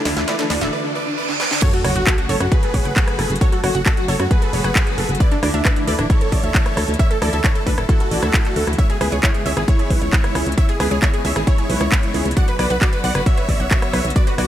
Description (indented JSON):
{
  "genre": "uplifting trance",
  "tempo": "134 BPM",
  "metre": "4/4",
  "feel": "straight",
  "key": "F# minor",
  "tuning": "A4 = 440 Hz",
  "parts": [
    { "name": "riser, reverse cymbal and sub drop", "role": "sound effects", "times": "0.0-3.4 s", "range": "none", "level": "-26 LUFS", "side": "right 2 dB", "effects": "none" },
    { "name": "dense compressed supersaw", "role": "melody", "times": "0.1-14.5 s", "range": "D4 to F#5", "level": "-24 LUFS", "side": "equal", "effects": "sidechain pumping, digital delay" },
    { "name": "warm studio string section", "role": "sustained chords", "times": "0.1-14.5 s", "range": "C#3 to F#4", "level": "-28 LUFS", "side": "left 3 dB", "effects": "sidechain pumping" },
    { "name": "wide unison pluck", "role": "arpeggios", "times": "0.1-14.5 s", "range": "E4 to F#5", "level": "-28 LUFS", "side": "right 4 dB", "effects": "sidechain pumping, dub echo" },
    { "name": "solid FM bass", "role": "bass", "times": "0.1-14.5 s", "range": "D1 to F#2", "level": "-22 LUFS", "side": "equal", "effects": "sidechain pumping" },
    { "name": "house drum kit", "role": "drums", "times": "0.1-14.5 s", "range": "crash cymbal, handclaps, hi-hat, rim click, snare drum", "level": "-24 LUFS", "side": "equal", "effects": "high-pass filter on snare, sidechain pumping on hats, high-pass filter on hats, sidechain pumping on cymbals, high-pass filter on cymbals, high-pass filter on room" },
    { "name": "wide unison pluck", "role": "second line", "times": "1.6-14.5 s", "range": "D4 to F#5", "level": "-29 LUFS", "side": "right 1 dB", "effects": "sidechain pumping" },
    { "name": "electronic kick drum", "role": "drums", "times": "1.6-14.2 s", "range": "none", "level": "-17 LUFS", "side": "equal", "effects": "none" }
  ],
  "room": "little or no reverb",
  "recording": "none",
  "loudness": "-15 LUFS",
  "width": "side -12 dB against mid",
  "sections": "0.0-1.6 A section; 1.6-14.5 B section",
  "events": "build-up 0.0-1.6; drum fill 0.0-0.7, 1.3-1.6; riser 0.0-0.7; reverse cymbal 0.7-1.6; drop 1.6-14.5; impact 1.6-3.4",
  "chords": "0.0 Dsus2; 1.6 F#m; 5.2 Dsus2; 8.8 C#m7; 12.4 Bm"
}